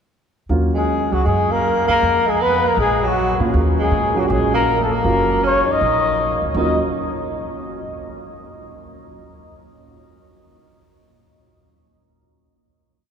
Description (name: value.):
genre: jazz, small-group swing and bop.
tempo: 158 BPM.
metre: 4/4.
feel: swing 64% on 8ths.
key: Eb minor.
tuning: A4 = 440 Hz.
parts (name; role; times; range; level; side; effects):
warm baby grand piano; accompaniment; 0.5-1.1, 3.4-6.8 s; Gb3 to F4; -25 LUFS; right 2 dB; none.
upright bass; bass; 0.5-6.8 s; Gb1 to Bb2; -22 LUFS; equal; none.
warm tenor saxophone; second line; 0.7-6.8 s; Gb3 to Eb4; -23 LUFS; right 3 dB; none.
breathy trumpet; melody; 0.8-6.8 s; Gb4 to Eb5; -19 LUFS; left 3 dB; none.
room: wet cathedral reverb, RT60 6.5 s.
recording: recorded in a church or concert hall.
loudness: -15 LUFS.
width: side -7 dB against mid.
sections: 0.5-6.6 A section; 6.6-8.1 final chord.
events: none.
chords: 0.5 Ebm9; 2.0 Fmadd11; 2.8 Bb5; 3.5 Ebm9.